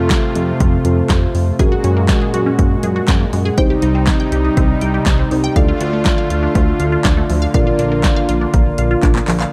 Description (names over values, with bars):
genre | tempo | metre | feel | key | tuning
synth-pop | 121 BPM | 4/4 | straight | Bb major | A4 = 440 Hz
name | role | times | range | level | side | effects
muted felt-like synth keys | accompaniment | 0.0-9.5 s | C4 to D5 | -23 LUFS | equal | chorus
brassy analog pad | sustained chords | 0.0-9.5 s | Bb2 to Gb4 | -22 LUFS | equal | chorus
chorused synth bass | bass | 0.0-9.5 s | Bb1 to Gb2 | -20 LUFS | equal | none
punchy analog drum machine | drums | 0.1-9.5 s | handclaps, hi-hat, kick drum, snare drum | -18 LUFS | equal | none
resonant blip pluck | arpeggios | 1.6-9.5 s | F3 to G5 | -25 LUFS | equal | phaser, analog delay
room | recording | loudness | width
light reverb, digital ambience | dark, warm production | -15 LUFS | mono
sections
0.0-9.5 A section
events
drum fill 9.0-9.5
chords
0.0 F; 1.6 Gbadd9; 3.6 Cm; 5.6 Dm; 7.5 Bb